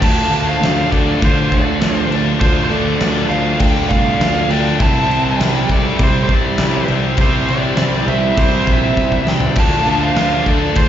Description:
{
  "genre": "hard rock",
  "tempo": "101 BPM",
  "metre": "4/4",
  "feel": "straight",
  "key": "D minor",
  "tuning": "A4 = 440 Hz",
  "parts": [
    { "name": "nasal lead guitar with a parked wah", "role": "melody", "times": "0.0-10.9 s", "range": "C5 to A5", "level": "-20 LUFS", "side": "right 2 dB", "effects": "overdrive, plate reverb, slapback echo" },
    { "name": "dark smooth lead guitar", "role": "second line", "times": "0.0-10.9 s", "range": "F4 to F5", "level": "-28 LUFS", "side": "right 4 dB", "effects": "overdrive, plate reverb, slapback echo" },
    { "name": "crunchy overdriven guitar", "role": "riff", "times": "0.0-10.9 s", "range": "C3 to D4", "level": "-23 LUFS", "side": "right 9 dB", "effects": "slapback echo" },
    { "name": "overdriven semi-hollow guitar", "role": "riff", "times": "0.0-10.9 s", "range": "C3 to F4", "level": "-24 LUFS", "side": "equal", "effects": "none" },
    { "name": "tight distorted guitar", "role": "riff", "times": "0.0-10.9 s", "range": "C3 to D4", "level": "-23 LUFS", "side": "left 11 dB", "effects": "distortion, slapback echo" },
    { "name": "fuzz picked electric bass", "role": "bass", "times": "0.0-10.9 s", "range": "Bb1 to D3", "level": "-20 LUFS", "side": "equal", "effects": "overdrive" },
    { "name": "big rock drum kit", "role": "drums", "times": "0.0-10.9 s", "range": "crash cymbal, kick drum, snare drum, toms", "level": "-17 LUFS", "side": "equal", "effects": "none" },
    { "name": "bright tonewheel organ", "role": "sustained chords", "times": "0.1-10.9 s", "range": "E4 to A5", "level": "-30 LUFS", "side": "equal", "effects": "none" }
  ],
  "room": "light reverb",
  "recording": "live gig heard through the venue's PA, recital hall reverb, nothing above 7.6 kHz",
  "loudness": "-13 LUFS",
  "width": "side -10 dB against mid",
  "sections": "0.0-10.9 A section",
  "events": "drum fill 9.0-9.6",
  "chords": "0.0 Dm; 4.8 C; 9.6 Dm",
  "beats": "| 0.02 0.62 1.22 1.82 | 2.42 3.01 3.61 4.21 | 4.80 5.40 6.00 6.59 | 7.19 7.78 8.38 8.97 | 9.57 10.17 10.76"
}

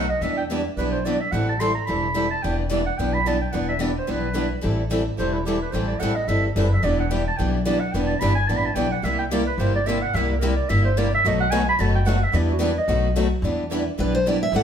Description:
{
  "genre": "acoustic string swing (jazz manouche)",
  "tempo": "218 BPM",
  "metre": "4/4",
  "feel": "swing 57% on 8ths",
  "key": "E minor",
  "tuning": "A4 = 440 Hz",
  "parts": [
    { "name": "breathy clarinet", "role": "second line", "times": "0.0-13.1 s", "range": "E4 to C6", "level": "-25 LUFS", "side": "right 3 dB", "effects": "none" },
    { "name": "picked steel-string acoustic guitar", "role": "accompaniment", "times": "0.0-14.6 s", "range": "B2 to A4", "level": "-26 LUFS", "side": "left 3 dB", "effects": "none" },
    { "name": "picked steel-string acoustic guitar", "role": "accompaniment", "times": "0.0-14.6 s", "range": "B2 to B4", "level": "-28 LUFS", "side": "right 3 dB", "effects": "none" },
    { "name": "upright bass", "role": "bass", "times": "0.0-14.6 s", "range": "E1 to E2", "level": "-24 LUFS", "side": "equal", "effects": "none" },
    { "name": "picked steel-string acoustic guitar", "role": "melody", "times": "14.0-14.6 s", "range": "B4 to F#5", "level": "-22 LUFS", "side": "equal", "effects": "none" }
  ],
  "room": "wet studio reverb, RT60 0.9 s",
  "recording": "heard from further back in the room",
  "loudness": "-20 LUFS",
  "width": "side -8 dB against mid",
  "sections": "0.2-13.4 A section; 13.4-14.6 A section",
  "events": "clarinet solo 0.0-13.4; steel-string acoustic guitar solo 13.4-14.6",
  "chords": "0.2 Em7; 1.3 Am9; 2.4 Em7; 4.6 Am7; 6.8 Em7; 9.0 C7; 11.2 B7; 12.3 Em7; 12.9 B7; 13.4 Em7",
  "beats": "| 0.23 0.50 0.78 1.05 | 1.33 1.60 1.88 2.15 | 2.43 2.71 2.98 3.26 | 3.53 3.81 4.08 4.36 | 4.63 4.91 5.18 5.46 | 5.74 6.01 6.29 6.56 | 6.84 7.11 7.39 7.66 | 7.94 8.21 8.49 8.77 | 9.04 9.31 9.59 9.86 | 10.14 10.41 10.69 10.96 | 11.24 11.51 11.79 12.06 | 12.34 12.61 12.88 13.16 | 13.43 13.71 13.98 14.26 | 14.53"
}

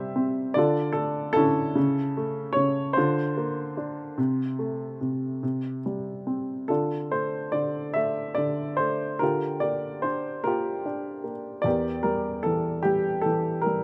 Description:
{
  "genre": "classical, lyrical solo piano",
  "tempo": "49 BPM (dotted quarters)",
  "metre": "6/8",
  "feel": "uneven beats, rubato",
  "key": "D minor from 6.7 s",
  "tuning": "A4 = 441 Hz",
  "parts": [
    { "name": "warm upright piano", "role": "solo", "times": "0.0-13.8 s", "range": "E2 to E5", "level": "-27 LUFS", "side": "equal", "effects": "none" }
  ],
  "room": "light reverb",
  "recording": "close, detailed microphones",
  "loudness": "-27 LUFS",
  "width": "mono",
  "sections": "0.0-6.7 A section; 6.7-13.8 B section",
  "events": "none",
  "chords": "0.0 C; 0.6 Dm; 1.8 A/C#; 3.0 Bbadd9/D; 4.2 F/C; 5.4 C5; 6.7 Dm; 9.2 Gm7/D; 11.7 Edim",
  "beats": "0.57 | 1.77 2.96 | 4.18 5.43 | 6.70 7.96 | 9.22 10.45 | 11.65 12.85"
}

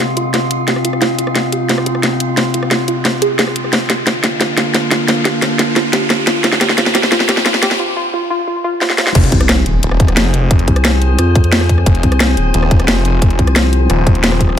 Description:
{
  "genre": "dark technical drum and bass",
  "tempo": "177 BPM",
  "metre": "4/4",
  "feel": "straight",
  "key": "F dorian",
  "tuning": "A4 = 438 Hz",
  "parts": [
    { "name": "metallic inharmonic drone", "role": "sustained chords", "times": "0.0-14.6 s", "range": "C3 to Ab4", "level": "-19 LUFS", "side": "equal", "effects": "chorus, built-in reverb, sidechain pumping" },
    { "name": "soft round pluck", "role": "arpeggios", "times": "0.0-9.0 s", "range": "F4 to Ab4", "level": "-20 LUFS", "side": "right 2 dB", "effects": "analog chorus, sidechain pumping, ping-pong delay" },
    { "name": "drum and bass drum kit", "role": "drums", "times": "0.0-14.6 s", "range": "crash cymbal, hi-hat, rim click, snare drum", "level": "-15 LUFS", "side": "equal", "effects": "overdrive" },
    { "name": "riser and impact", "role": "sound effects", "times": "0.5-10.5 s", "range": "none", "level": "-22 LUFS", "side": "equal", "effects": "none" },
    { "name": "snarling distorted saw bass", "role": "bass", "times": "9.2-14.6 s", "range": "Eb1 to F1", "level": "-15 LUFS", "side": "equal", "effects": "overdrive, sidechain pumping" },
    { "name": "electronic kick drum", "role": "drums", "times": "9.2-14.5 s", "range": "none", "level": "-12 LUFS", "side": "equal", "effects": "none" },
    { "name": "vowel-sweep wobble bass", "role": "bass", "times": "9.3-13.9 s", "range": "Eb1 to F2", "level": "-13 LUFS", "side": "equal", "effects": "chorus" }
  ],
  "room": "light reverb",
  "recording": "high-pass filter",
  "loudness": "-11 LUFS",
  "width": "side -9 dB against mid",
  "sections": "0.0-9.2 A section; 9.2-14.6 B section",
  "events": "build-up 0.0-9.2; drum fill 0.0-7.8, 8.8-9.2; filter sweep on synth pluck 0.0-9.2; filter sweep 0.0-9.2; riser 0.5-7.8; break 7.8-9.2; drop 9.2-14.6; impact 9.2-10.5",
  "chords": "0.0 Fm; 3.7 Bb; 9.2 Fm",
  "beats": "0.00 0.34 0.68 | 1.02 1.35 1.69 2.03 | 2.37 2.71 3.05 3.39 | 3.73 4.07 4.41 4.75 | 5.08 5.42 5.76 6.10 | 6.44 6.78 7.12 7.46 | 7.80 8.13 8.47 8.81 | 9.15 9.49 9.83 10.17 | 10.51 10.85 11.19 11.52 | 11.86 12.20 12.54 12.88 | 13.22 13.56 13.90 14.24 | 14.57"
}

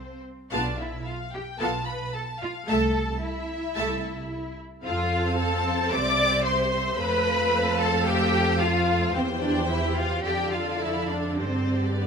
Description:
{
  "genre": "quick classical-period movement for string orchestra",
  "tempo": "111 BPM",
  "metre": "4/4",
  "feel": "rubato",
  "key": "A minor, C major from 4.8 s",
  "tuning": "A4 = 440 Hz",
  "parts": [
    { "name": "warm symphonic violin section", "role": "melody", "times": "0.0-12.1 s", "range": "B4 to D6", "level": "-31 LUFS", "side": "left 4 dB", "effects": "none" },
    { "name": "warm symphonic cello section", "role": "bass", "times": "0.0-12.1 s", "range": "B3 to D5", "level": "-28 LUFS", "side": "equal", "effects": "none" },
    { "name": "rich symphonic violin section", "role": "second line", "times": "0.5-12.1 s", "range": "C5 to A5", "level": "-32 LUFS", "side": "left 1 dB", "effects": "none" },
    { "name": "rich symphonic viola section", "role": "accompaniment", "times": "0.5-12.1 s", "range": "D3 to A4", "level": "-30 LUFS", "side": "right 1 dB", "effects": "none" },
    { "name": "warm symphonic double bass section", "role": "bass", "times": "0.5-12.1 s", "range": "B1 to G2", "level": "-30 LUFS", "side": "right 2 dB", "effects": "none" }
  ],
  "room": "light reverb",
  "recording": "none",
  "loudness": "-23 LUFS",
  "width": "side -6 dB against mid",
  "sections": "0.0-12.1 A section",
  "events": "none",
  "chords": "0.0 N.C.; 0.5 B7(b5, no3); 2.7 Am/C; 4.8 F; 5.9 C; 7.0 F; 9.2 C/E; 10.2 Dm/F; 11.4 G",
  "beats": "| 0.53 1.07 1.61 2.15 | 2.69 3.22 3.76 4.30 | 4.84 5.38 5.92 6.46 | 6.99 7.54 8.07 8.61 | 9.15 9.70 10.25 10.81 | 11.39 11.97"
}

